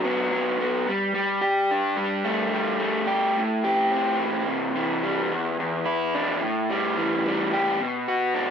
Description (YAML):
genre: rock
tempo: 108 BPM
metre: 4/4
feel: straight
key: unclear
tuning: A4 = 441 Hz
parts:
  - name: raw garage guitar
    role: solo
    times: 0.0-8.5 s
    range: E2 to G4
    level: -22 LUFS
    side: equal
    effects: overdrive, slapback echo
room: light reverb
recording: none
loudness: -22 LUFS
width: side -7 dB against mid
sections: 0.0-8.5 A section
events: none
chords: 0.0 Bm; 0.9 Gsus2; 3.4 Am7; 4.5 C; 5.3 Dsus2/E; 6.4 A5; 7.8 Bm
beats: 0.04 0.59 | 1.15 1.70 2.26 2.81 | 3.37 3.92 4.48 5.03 | 5.59 6.14 6.69 7.25 | 7.80 8.35